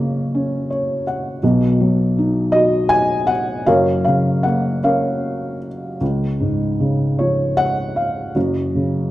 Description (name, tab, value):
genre	classical, lyrical solo piano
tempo	52 BPM (dotted quarters)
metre	6/8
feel	uneven beats, rubato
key	unclear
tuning	A4 = 439 Hz
part	felt-muted upright piano	solo	0.0-9.1 s	Gb1 to Ab5	-16 LUFS	equal	none
room	wet recital hall reverb, RT60 1.5 s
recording	dark, warm production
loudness	-16 LUFS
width	side -15 dB against mid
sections	0.0-9.1 A section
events	felt piano fill 0.3-1.4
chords	0.0 Gbmaj7; 1.4 Cb; 3.7 Gbmaj7; 6.0 Db; 8.4 Gb5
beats	0.33 | 1.43 2.53 | 3.67 4.83 | 6.01 7.18 | 8.35